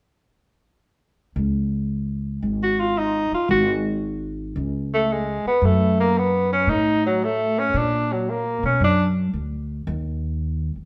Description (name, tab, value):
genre	jazz, small-group swing and bop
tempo	113 BPM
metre	4/4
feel	swing 68% on 8ths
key	unclear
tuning	A4 = 440 Hz
part	upright bass	bass	1.4-10.8 s	Ab1 to Cb3	-26 LUFS	equal	none
part	warm tenor saxophone	melody	2.6-9.1 s	F#3 to Gb4	-22 LUFS	equal	none
room	wet stone room reverb, RT60 1.1 s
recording	band playing live in one room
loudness	-22 LUFS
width	mono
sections	1.4-10.9 A section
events	none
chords	1.4 Db5; 3.5 Gbsus2/Ab; 4.6 Amaj7/C# (rootless); 5.6 Gbm; 7.8 Bbaug; 9.9 Eb5